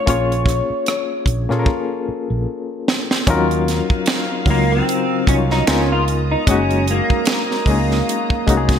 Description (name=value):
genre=R&B, neo-soul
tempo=75 BPM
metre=4/4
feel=swing 56% on 16ths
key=unclear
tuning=A4 = 442 Hz
part: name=electric guitar through a small old amp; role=melody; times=0.0-8.4 s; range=Bb3 to Db5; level=-21 LUFS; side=equal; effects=analog chorus
part: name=barky reed electric piano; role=accompaniment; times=0.0-8.8 s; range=Db3 to Db5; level=-21 LUFS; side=left 4 dB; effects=fast tremolo
part: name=mellow fretless electric bass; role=bass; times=0.1-8.8 s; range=Gb1 to Bb2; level=-20 LUFS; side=right 1 dB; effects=lush chorus
part: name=tight funk drum kit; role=drums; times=0.1-8.8 s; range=finger snaps, hi-hat, kick drum, rim click, snare drum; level=-19 LUFS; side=right 1 dB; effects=gated reverb
part: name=warm studio string section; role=sustained chords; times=3.3-8.8 s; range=Gb3 to Bb5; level=-27 LUFS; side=left 1 dB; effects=none
room=light reverb, studio ambience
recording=bright 1980s-style digital production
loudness=-15 LUFS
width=side -8 dB against mid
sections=0.0-3.3 A section; 3.3-8.8 B section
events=drum fill 1.7-3.3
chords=0.1 Bbm7; 3.3 Ebm9; 5.7 Db13; 6.5 Gb6